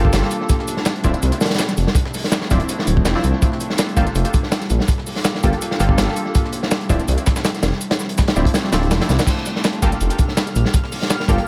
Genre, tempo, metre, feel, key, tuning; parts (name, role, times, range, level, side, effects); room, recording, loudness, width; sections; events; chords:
drum and bass, jungle; 164 BPM; 4/4; straight; G minor; A4 = 439 Hz
warbly tape-like pad; sustained chords; 0.0-11.5 s; Bb3 to A4; -30 LUFS; equal; chorus, built-in reverb
orchestra-hit-like synth stab; stabs; 0.0-11.4 s; F3 to A4; -29 LUFS; equal; built-in reverb, tape echo
dark detuned saw bass; bass; 0.0-11.4 s; D1 to C2; -21 LUFS; equal; tube saturation
crunchy breakbeat drum kit; drums; 0.0-11.5 s; crash cymbal, hi-hat, kick drum, snare drum; -21 LUFS; equal; tape echo
breakbeat sampler-style drum kit; drums; 0.1-11.4 s; hi-hat, shaker, snare drum; -31 LUFS; equal; high-pass filter on perc, high-pass filter on snare, high-pass filter on hats
twinkling granular texture; texture; 10.0-11.5 s; F6; -36 LUFS; equal; built-in reverb
light reverb, small room ambience; echo-heavy mix; -19 LUFS; mono
0.0-9.3 A section; 9.3-11.5 A section
drop 0.0-9.3, 9.3-11.5
0.5 Dm9; 3.4 Gm9; 6.3 Dm9; 9.3 Gm9